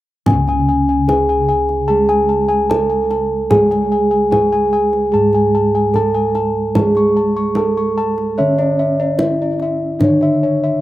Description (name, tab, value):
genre	Javanese gamelan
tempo	74 BPM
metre	4/4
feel	straight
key	unclear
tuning	A4 = 441 Hz
part	gamelan-type bronze metallophone	melody	0.3-10.8 s	C#4 to C#5	-16 LUFS	right 2 dB	none
part	gamelan-type bronze metallophone	accompaniment	0.3-10.8 s	C#3 to C#4	-21 LUFS	equal	none
part	gamelan-type bossed gongs	arpeggios	0.3-10.8 s	C#5 to C#6	-20 LUFS	left 5 dB	slapback echo
part	gamelan-type bossed gongs	bass	0.3-10.8 s	C#2 to G#4	-21 LUFS	equal	none
part	kendang	percussion	0.3-10.3 s	none	-20 LUFS	right 1 dB	none
room	little or no reverb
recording	recorded outdoors, with no room sound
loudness	-13 LUFS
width	side -15 dB against mid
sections	0.3-10.8 A section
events	none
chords	none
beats	| 0.27 1.08 1.89 2.70 | 3.52 4.33 5.14 5.95 | 6.76 7.57 8.38 9.19 | 10.00 10.81